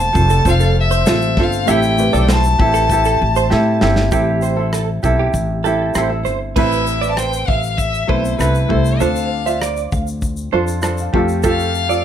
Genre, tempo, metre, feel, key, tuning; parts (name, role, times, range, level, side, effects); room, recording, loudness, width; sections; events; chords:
acoustic pop; 98 BPM; 4/4; straight; A minor; A4 = 441 Hz
rich violin; melody; 0.0-12.0 s; B4 to A5; -20 LUFS; left 3 dB; plate reverb
felt-muted upright piano; accompaniment; 0.0-12.0 s; A3 to C6; -25 LUFS; left 3 dB
tenor ukulele; accompaniment; 0.0-12.0 s; C4 to C5; -20 LUFS; right 3 dB
upright bass; bass; 0.0-12.0 s; E1 to A2; -18 LUFS; left 1 dB
modern studio drum kit; drums; 0.1-12.0 s; crash cymbal, kick drum, rim click, shaker, snare drum; -21 LUFS; equal
direct-recorded clean electric guitar; arpeggios; 0.3-12.0 s; G4 to F5; -22 LUFS; right 7 dB; ensemble chorus
light reverb; -14 LUFS; side -9 dB against mid
0.0-4.1 A section; 4.1-6.6 B section; 6.6-12.0 C section
drum fill 3.5-4.1
0.0 F; 1.7 Am7; 6.6 Amadd9; 9.0 Dm7; 11.1 Fadd9